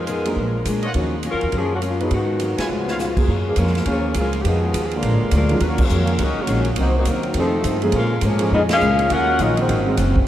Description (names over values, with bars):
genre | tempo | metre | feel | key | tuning
jazz, big band swing | 206 BPM | 4/4 | swing 62% on 8ths | Eb minor | A4 = 440 Hz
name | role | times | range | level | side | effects
mellow saxophone section | melody | 0.0-10.0 s | Db3 to Gb5 | -22 LUFS | left 2 dB | none
upright bass | bass | 0.0-10.3 s | F1 to Bb2 | -22 LUFS | equal | none
picked steel-string acoustic guitar | accompaniment | 0.1-10.2 s | F2 to Ab4 | -27 LUFS | left 2 dB | none
swinging big-band drum kit | drums | 0.1-10.2 s | crash cymbal, hi-hat, kick drum, ride cymbal, snare drum | -26 LUFS | right 1 dB | none
warm baby grand piano | accompaniment | 0.3-3.3, 5.5-5.6, 7.8-10.0 s | Eb3 to Cb5 | -28 LUFS | right 1 dB | none
clear trumpet section | stabs | 0.8-3.0 s | F4 to Ab5 | -35 LUFS | equal | none
clear trombone section | second line | 2.6-10.0 s | Ab2 to Gb4 | -26 LUFS | right 2 dB | none
room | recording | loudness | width
wet cathedral reverb, RT60 5.7 s | in a vast, echoing space | -17 LUFS | side -12 dB against mid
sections
0.0-3.3 A section; 3.3-10.3 B section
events
band accent 2.6, 5.8, 8.7; drum fill 2.7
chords
0.4 Bb7alt; 1.0 Ebm9; 2.1 Abm7; 2.7 Db7; 3.3 Gbmaj9; 4.5 Fm7b5; 5.0 Bb7b13; 5.6 Ebm11; 6.8 Cm7b5; 7.4 F7; 7.9 Bbm7; 9.1 Ebm9; 9.7 Ab7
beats
0.08 0.37 0.67 | 0.96 1.25 1.54 1.83 | 2.12 2.41 2.71 3.00 | 3.29 3.58 3.87 4.16 | 4.45 4.74 5.03 5.32 | 5.61 5.90 6.19 6.49 | 6.78 7.07 7.36 7.65 | 7.94 8.23 8.52 8.81 | 9.11 9.40 9.69 9.98